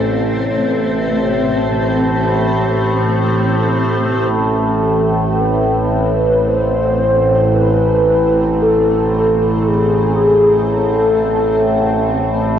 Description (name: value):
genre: dark ambient drone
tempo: free time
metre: none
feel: none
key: A harmonic minor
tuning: A4 = 439 Hz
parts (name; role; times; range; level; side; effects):
- granular cloud pad; sustained chords; 0.0-12.6 s; A3 to C4; -22 LUFS; equal; built-in reverb
- overtone-sweeping drone; drone; 0.0-12.6 s; A1 to A2; -15 LUFS; equal; chorus, built-in reverb
- mellow horn-like synth lead; melody; 4.3-12.4 s; G#4 to C5; -15 LUFS; left 1 dB; analog chorus, ping-pong delay
room: wet cathedral reverb, RT60 5.6 s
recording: worn, warbling old tape, cassette tape, warbly pitch drift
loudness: -12 LUFS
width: side -9 dB against mid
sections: 0.0-4.3 A section; 4.3-12.6 B section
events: none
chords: 0.0 Am